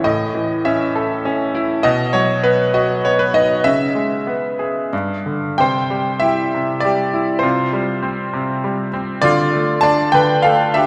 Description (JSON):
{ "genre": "classical, lyrical solo piano", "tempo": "88-103 BPM", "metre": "3/4", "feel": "rubato", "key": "C major from 5.6 s", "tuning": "A4 = 442 Hz", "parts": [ { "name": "bright concert grand piano", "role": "solo", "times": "0.0-10.9 s", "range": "G2 to A5", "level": "-17 LUFS", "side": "equal", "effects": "none" } ], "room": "wet church reverb, RT60 2.8 s", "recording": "recorded in a church or concert hall", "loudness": "-17 LUFS", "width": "mono", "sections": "0.0-5.6 A section; 5.6-10.9 B section", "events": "none", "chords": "0.0 A; 1.8 B; 3.6 C#m7; 4.9 G5; 5.6 C; 7.4 Fsus2/C; 9.2 Dm" }